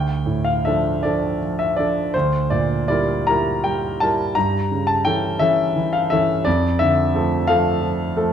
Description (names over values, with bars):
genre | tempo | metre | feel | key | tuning
classical, romantic nocturne for solo piano | 51-59 BPM (dotted quarters) | 12/8 | rubato | D minor | A4 = 440 Hz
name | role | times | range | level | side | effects
clear concert grand piano | solo | 0.0-8.3 s | D2 to Bb5 | -17 LUFS | equal | none
room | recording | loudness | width
moderate large studio reverb, RT60 1.2 s | none | -17 LUFS | side -8 dB against mid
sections
0.0-8.3 A section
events
none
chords
0.0 Dm; 2.1 Edim/D; 4.4 A7/G; 6.5 Dm/F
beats
1.02 2.14 3.27 | 4.35 5.42 6.46 7.49